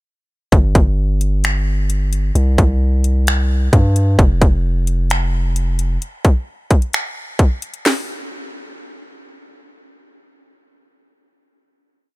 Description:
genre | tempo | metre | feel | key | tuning
hip hop, atmospheric cloud-rap | 131 BPM | 4/4 | half-time | unclear | A4 = 440 Hz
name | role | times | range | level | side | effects
long sustained 808-style bass | bass | 0.5-6.0 s | F1 to G2 | -15 LUFS | equal | none
trap drum kit | drums | 0.5-8.0 s | finger snaps, hi-hat, kick drum, snare drum | -16 LUFS | equal | none
room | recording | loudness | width
little or no reverb | none | -14 LUFS | side -20 dB against mid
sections
0.5-7.9 verse; 7.9-11.5 final hit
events
none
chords
none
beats
| 0.52 0.98 1.44 1.90 | 2.35 2.81 3.27 3.73 | 4.19 4.64 5.10 5.56 | 6.02 6.48 6.93 7.39 | 7.85

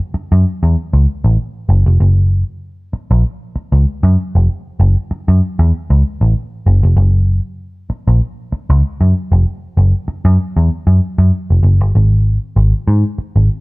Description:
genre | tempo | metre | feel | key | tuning
funk | 97 BPM | 4/4 | swing 56% on 16ths | unclear | A4 = 441 Hz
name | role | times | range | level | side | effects
vintage muted picked electric bass | solo | 0.1-13.5 s | E#1 to G#2 | -11 LUFS | equal | none
room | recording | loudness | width
light reverb | none | -11 LUFS | side -25 dB against mid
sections
0.0-11.9 A section; 11.9-13.6 B section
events
none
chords
none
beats
0.14 0.76 1.38 | 2.00 2.62 3.24 3.86 | 4.48 5.10 5.72 6.34 | 6.96 7.59 8.21 8.83 | 9.45 10.07 10.69 11.32 | 11.94 12.56 13.18

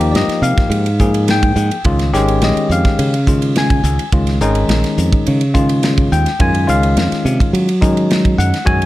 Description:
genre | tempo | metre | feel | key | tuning
electric jazz fusion | 106 BPM | 4/4 | straight | unclear | A4 = 439 Hz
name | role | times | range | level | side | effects
bell-like tine electric piano | accompaniment | 0.0-8.9 s | Eb3 to Ab5 | -16 LUFS | left 2 dB | none
modern bright fingered electric bass | bass | 0.0-8.9 s | Ab1 to Gb3 | -15 LUFS | right 1 dB | none
modern studio drum kit | drums | 0.0-8.9 s | hi-hat, kick drum, ride cymbal, snare drum | -18 LUFS | equal | none
room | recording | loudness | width
light reverb | dark, warm production | -12 LUFS | side -16 dB against mid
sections
0.0-8.9 A section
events
none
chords
0.0 Abmaj7sus2; 1.8 Dbadd9; 6.4 Gbsus2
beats
0.14 0.71 1.28 | 1.85 2.42 2.99 3.56 | 4.12 4.69 5.26 5.83 | 6.40 6.96 7.53 8.10 | 8.67

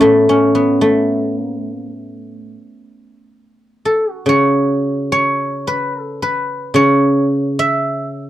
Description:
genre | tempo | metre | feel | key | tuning
chinese traditional, Chinese solo plucked strings | 65-77 BPM | 4/4 | rubato | A gong mode | A4 = 440 Hz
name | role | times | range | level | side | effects
guzheng | solo | 0.0-8.3 s | A2 to E5 | -14 LUFS | equal | none
room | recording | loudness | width
light reverb | dry, close 1970s-style studio recording | -13 LUFS | side -13 dB against mid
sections
0.0-3.4 A section; 3.4-8.3 B section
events
none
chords
none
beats
| 0.04 0.83 1.65 2.54 | 3.42 4.27 5.11 5.93 | 6.75 7.57

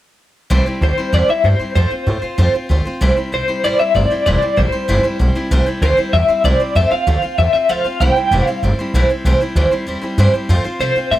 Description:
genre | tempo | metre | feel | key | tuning
rockabilly | 192 BPM | 4/4 | straight | C major | A4 = 440 Hz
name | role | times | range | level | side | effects
picked steel-string acoustic guitar | accompaniment | 0.5-11.2 s | C3 to C5 | -19 LUFS | right 2 dB | none
upright bass | bass | 0.5-11.2 s | E1 to C3 | -16 LUFS | equal | none
electric guitar through a small old amp | melody | 0.8-8.6, 10.8-11.2 s | C5 to G5 | -16 LUFS | left 2 dB | tremolo, tape echo
room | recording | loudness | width
light reverb | none | -13 LUFS | side -14 dB against mid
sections
0.5-5.5 A section; 5.5-11.2 B section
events
none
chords
0.5 C; 1.8 F; 3.0 C; 6.8 F; 8.0 C; 10.5 F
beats
| 0.51 0.82 1.14 1.45 | 1.76 2.08 2.39 2.70 | 3.01 3.33 3.64 3.95 | 4.26 4.58 4.89 5.20 | 5.51 5.83 6.14 6.45 | 6.76 7.07 7.38 7.69 | 8.01 8.32 8.63 8.94 | 9.25 9.56 9.87 10.18 | 10.49 10.80 11.11

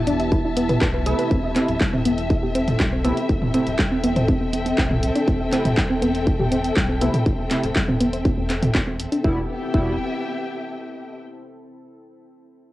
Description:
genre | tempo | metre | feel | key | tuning
melodic techno | 121 BPM | 4/4 | straight | unclear | A4 = 440 Hz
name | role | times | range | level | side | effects
deep dark ambient pad | sustained chords | 0.0-9.5 s | B3 to A4 | -32 LUFS | equal | chorus, built-in reverb, sidechain pumping
dark symphonic string section | texture | 0.0-11.2 s | B3 to A5 | -27 LUFS | left 1 dB | sidechain pumping
soft round pluck | arpeggios | 0.1-10.0 s | G3 to E5 | -24 LUFS | equal | chorus, sidechain pumping, tape echo
round analog bass | bass | 0.1-10.0 s | D1 to B1 | -29 LUFS | equal | sidechain pumping
punchy analog drum machine | drums | 0.1-9.2 s | handclaps, hi-hat, toms | -25 LUFS | equal | overdrive, sidechain pumping on hats, sidechain pumping on toms
electronic kick drum | drums | 0.3-9.8 s | none | -22 LUFS | equal | distortion
sync-sweep polysynth | stabs | 1.1-9.9 s | B2 to E4 | -28 LUFS | right 1 dB | chorus, sidechain pumping, tape echo
room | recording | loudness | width
light reverb | home recording on cassette | -18 LUFS | side -16 dB against mid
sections
0.0-9.2 A section; 9.2-11.2 B section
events
filter sweep on synth arpeggio sound 0.0-9.2; filter sweep on analog polysynth 0.0-9.2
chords
0.0 C6; 9.2 Em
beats
0.32 0.81 | 1.31 1.81 2.30 2.80 | 3.29 3.79 4.29 4.78 | 5.28 5.77 6.27 6.76 | 7.26 7.76 8.25 8.75 | 9.24 9.74 10.24 10.73

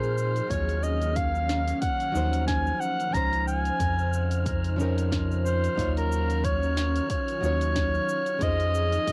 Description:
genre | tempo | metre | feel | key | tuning
sunset chillout | 91 BPM | 4/4 | swing 55% on 16ths | Eb dorian | A4 = 440 Hz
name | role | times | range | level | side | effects
warm soprano saxophone | melody | 0.0-9.1 s | Bb4 to Bb5 | -31 LUFS | equal | cassette tape, tape echo
nylon-string guitar | accompaniment | 0.0-9.1 s | F3 to Db5 | -35 LUFS | equal | none
airy breathy pad | sustained chords | 0.0-9.1 s | Db3 to C5 | -37 LUFS | equal | chorus
round analog bass | bass | 0.0-9.1 s | Db2 to Bb2 | -30 LUFS | equal | none
smooth R&B drum kit | drums | 0.0-9.1 s | cabasa, hi-hat, snare drum | -39 LUFS | equal | overdrive, cassette tape
wind-like tuned noise texture | texture | 0.0-9.1 s | F6 | -44 LUFS | equal | built-in reverb
electronic kick drum | drums | 0.5-9.1 s | none | -34 LUFS | equal | overdrive, cassette tape
room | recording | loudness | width
moderate booth ambience, RT60 0.2 s | home recording on cassette | -26 LUFS | mono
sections
0.0-9.1 A section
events
none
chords
0.0 Fm7; 0.5 Ebm9; 3.1 Dbmaj9; 5.8 Ebm9; 8.4 Fm7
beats
| 0.50 1.16 1.82 2.48 | 3.14 3.80 4.46 5.12 | 5.78 6.44 7.10 7.76 | 8.42 9.08

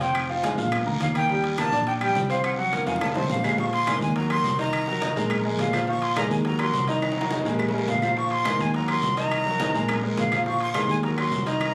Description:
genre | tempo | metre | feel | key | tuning
latin, salsa | 210 BPM | 4/4 | straight | unclear | A4 = 441 Hz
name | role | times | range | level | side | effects
bright silver concert flute | melody | 0.0-11.7 s | F5 to Db6 | -29 LUFS | equal | none
bright grand piano | accompaniment | 0.0-11.7 s | Eb3 to F6 | -30 LUFS | equal | none
fingered electric bass | bass | 0.0-11.7 s | F1 to F2 | -31 LUFS | equal | none
congas | percussion | 0.0-11.7 s | none | -37 LUFS | equal | none
guiro | percussion | 0.0-11.7 s | none | -41 LUFS | equal | none
timbales | percussion | 0.0-11.7 s | none | -37 LUFS | equal | none
bongos | percussion | 0.1-11.7 s | none | -39 LUFS | equal | none
claves | percussion | 0.1-11.7 s | none | -36 LUFS | equal | none
room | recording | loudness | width
light reverb | recorded on a phone in the room, club reverb, compression | -24 LUFS | mono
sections
0.0-3.6 A section; 3.6-11.7 B section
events
drum fill 2.7-3.6, 7.0-8.2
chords
0.2 Fm; 0.7 Bb; 1.3 Ebmaj7; 2.4 Ab13/C (rootless); 3.0 F5; 3.6 Bbsus2; 4.2 Ebm; 4.7 Cm7b5; 5.3 Bb5; 6.5 Ebm; 7.0 Cm7b5; 7.6 Bbsus2; 8.7 Ebm; 9.3 Cm7b5; 9.9 Bbsus2; 11.0 Ebm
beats
| 0.15 0.44 0.72 1.01 | 1.30 1.58 1.87 2.16 | 2.44 2.73 3.01 3.30 | 3.59 3.87 4.16 4.45 | 4.73 5.02 5.30 5.59 | 5.88 6.16 6.45 6.74 | 7.02 7.31 7.59 7.88 | 8.17 8.45 8.74 9.03 | 9.31 9.60 9.89 10.17 | 10.46 10.75 11.03 11.32 | 11.61

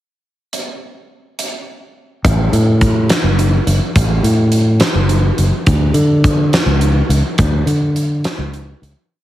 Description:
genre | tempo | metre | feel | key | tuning
indie rock | 70 BPM (dotted quarters) | 6/8 | straight | unclear | A4 = 442 Hz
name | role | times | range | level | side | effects
big rock drum kit | drums | 0.5-9.0 s | hi-hat, kick drum, snare drum | -16 LUFS | equal | none
fingered electric bass | bass | 2.2-8.9 s | F#1 to D3 | -13 LUFS | equal | none
room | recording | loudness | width
little or no reverb | heavily compressed radio sound | -12 LUFS | side -14 dB against mid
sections
0.5-2.2 pickup bar; 2.2-9.1 interlude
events
fade-out 7.4-9.1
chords
none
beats
| 0.52 1.38 | 2.24 3.10 | 3.96 4.82 | 5.68 6.54 | 7.39 8.25

